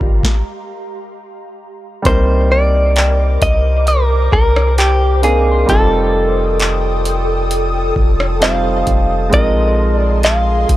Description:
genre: contemporary R&B.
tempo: 66 BPM.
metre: 4/4.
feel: straight.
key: C minor.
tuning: A4 = 439 Hz.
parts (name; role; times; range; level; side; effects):
direct-recorded clean electric guitar; melody; 0.0-10.8 s; G4 to F5; -16 LUFS; equal; tape echo.
warm baby grand piano; accompaniment; 0.0-10.8 s; G3 to C5; -20 LUFS; right 2 dB; none.
ethereal airy pad; sustained chords; 0.0-10.8 s; G4 to Eb6; -22 LUFS; left 1 dB; ensemble chorus, built-in reverb.
long sustained 808-style bass; bass; 0.0-10.8 s; F1 to C2; -16 LUFS; equal; none.
booming analog drum machine; drums; 0.0-10.8 s; handclaps, hi-hat, kick drum, rim click, snare drum; -15 LUFS; equal; overdrive.
soft synth bell; texture; 3.0-9.7 s; C5 to C6; -30 LUFS; equal; none.
room: little or no reverb.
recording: dry, gritty hardware recording.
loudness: -11 LUFS.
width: side -15 dB against mid.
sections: 0.0-2.1 A section; 2.1-10.8 B section.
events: stop 0.2-2.1.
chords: 0.0 Gm7; 2.1 Cm9; 5.7 F9; 9.3 Bb9sus4.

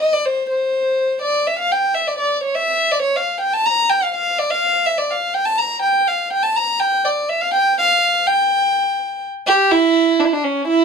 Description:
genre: klezmer.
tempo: 124 BPM.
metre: 2/4.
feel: straight.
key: G dorian sharp4.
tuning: A4 = 440 Hz.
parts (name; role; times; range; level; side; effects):
rich violin; solo; 0.0-10.8 s; C#4 to Bb5; -15 LUFS; equal; none.
room: light reverb.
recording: none.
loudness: -15 LUFS.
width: side -6 dB against mid.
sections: 0.0-1.7 A section; 1.7-9.5 B section; 9.5-10.8 C section.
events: none.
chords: none.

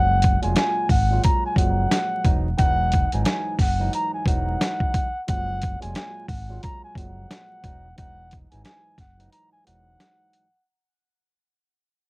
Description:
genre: hip hop, boom-bap hip-hop.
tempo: 89 BPM.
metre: 4/4.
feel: swing 60% on 16ths.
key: unclear.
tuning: A4 = 441 Hz.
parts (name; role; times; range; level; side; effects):
trumpet with cup mute; melody; 0.0-10.6 s; F#5 to A#5; -25 LUFS; equal; high-pass filter, low-pass filter, cassette tape.
tine electric piano; accompaniment; 0.0-10.5 s; G#2 to E#4; -33 LUFS; right 4 dB; medium stereo tremolo, high-pass filter, low-pass filter.
sub bass with octave; bass; 0.0-10.0 s; E1 to G#1; -24 LUFS; equal; tube saturation.
dusty soul sampler-style drum kit; drums; 0.2-10.5 s; hi-hat, kick drum, snare drum; -22 LUFS; equal; cassette tape.
room: little or no reverb.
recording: home recording on cassette, vinyl crackle.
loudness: -19 LUFS.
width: side -25 dB against mid.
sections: 0.0-10.7 A section.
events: fade-out 0.0-10.7; break 9.3-10.7.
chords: 0.0 F#maj9; 2.2 Emaj9; 5.3 F#maj9; 7.6 Emaj9.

